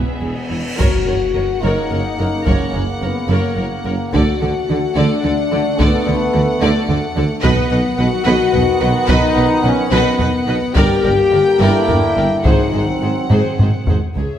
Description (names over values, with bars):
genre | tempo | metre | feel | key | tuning
cinematic, epic orchestral film score | 72 BPM (dotted quarters) | 6/8 | straight | unclear | A4 = 441 Hz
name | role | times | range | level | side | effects
rich chamber violin section | melody | 0.0-14.4 s | G#4 to G5 | -27 LUFS | left 3 dB | none
rich symphonic violin section | second line | 0.0-14.4 s | B4 to E5 | -27 LUFS | left 1 dB | none
warm symphonic viola section | accompaniment | 0.0-14.4 s | B3 to B4 | -24 LUFS | right 1 dB | none
mellow French horn section | sustained chords | 0.0-14.4 s | G#3 to G4 | -19 LUFS | left 4 dB | none
dark tuba | bass | 0.0-14.0 s | E1 to D2 | -22 LUFS | right 3 dB | none
cymbal swell and impact | sound effects | 0.2-2.5 s | none | -26 LUFS | equal | none
rich studio double bass section | bass | 0.2-14.2 s | E1 to D2 | -23 LUFS | right 2 dB | none
rich symphonic cello section | bass | 0.2-14.2 s | C#2 to D3 | -22 LUFS | right 1 dB | none
clear trombone section | sustained chords | 0.8-13.8 s | C#3 to B#3 | -24 LUFS | right 4 dB | none
taiko ensemble | drums | 0.8-14.4 s | none | -19 LUFS | equal | none
timpani | percussion | 12.5-13.3 s | G#2 | -26 LUFS | equal | none
room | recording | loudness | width
wet scoring stage reverb, RT60 1.6 s | none | -13 LUFS | side -10 dB against mid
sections
0.8-14.2 A section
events
cymbal swell 0.2-0.8; impact 0.8-2.5; drum fill 13.3-14.2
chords
0.0 E; 0.8 F#; 4.1 D; 7.4 B; 10.8 Gm; 12.5 G#7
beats
| 0.78 1.62 | 2.46 3.29 | 4.13 4.96 | 5.79 6.62 | 7.44 8.27 | 9.09 9.92 | 10.77 11.61 | 12.46 13.31 | 14.16